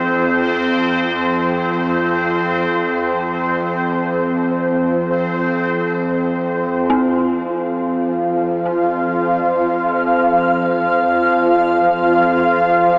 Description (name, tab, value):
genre	ambient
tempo	free time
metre	none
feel	none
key	unclear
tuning	A4 = 435 Hz
part	dark detuned synth bell	arpeggios	0.0-13.0 s	C4 to Ab4	-24 LUFS	equal	chorus, tape echo
part	bowed-like drone	drone	0.0-13.0 s	F2 to F3	-18 LUFS	equal	built-in reverb
part	bubbling stepped-filter texture	texture	0.0-13.0 s	C4 to F5	-19 LUFS	equal	chorus, built-in reverb
part	granular cloud pad	sustained chords	8.2-13.0 s	F4 to Ab5	-16 LUFS	equal	built-in reverb
room	wet huge ambient reverb, RT60 8.2 s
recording	small speaker sound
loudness	-14 LUFS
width	side -37 dB against mid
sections	0.0-6.9 A section; 6.9-13.0 B section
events	none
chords	0.0 Fm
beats	free time